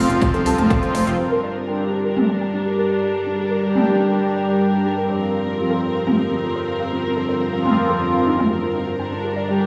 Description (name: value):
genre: melodic techno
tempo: 123 BPM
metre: 4/4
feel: straight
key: G minor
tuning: A4 = 440 Hz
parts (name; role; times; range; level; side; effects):
- brassy analog pad; stabs; 0.0-9.6 s; F3 to G4; -24 LUFS; equal; chorus, vintage 12-bit sampler grit, sidechain pumping, tape echo
- swelling detuned saw bass; bass; 0.0-1.1 s; F1 to C2; -24 LUFS; equal; sidechain pumping
- analog drone; drone; 0.0-9.7 s; G2 to D3; -32 LUFS; equal; chorus, sidechain pumping
- warbly tape-like pad; texture; 0.0-9.7 s; F4 to Bb5; -30 LUFS; equal; chorus, built-in reverb, sidechain pumping
- warbly dusty pluck; arpeggios; 0.1-9.7 s; C4 to A5; -29 LUFS; equal; lush chorus, sidechain pumping, tape echo
- techno drum kit; drums; 0.1-8.5 s; hi-hat, toms; -24 LUFS; equal; low-pass filter on hats, low-pass filter on toms, low-pass filter on room
- electronic kick drum; drums; 0.2-0.8 s; none; -23 LUFS; equal; none
- clear symphonic string section; sustained chords; 1.2-9.7 s; F2 to Bb4; -26 LUFS; equal; sidechain pumping
room: moderate huge ambient reverb, RT60 4.3 s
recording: played on a big sound system in a bare room, stone room reverb, small room ambience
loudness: -20 LUFS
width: mono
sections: 0.0-1.2 A section; 1.2-9.7 B section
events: filter sweep on synth arpeggio sound 0.0-1.2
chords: 0.0 Fsus4; 1.2 Gm; 5.1 Fsus4; 9.0 Gm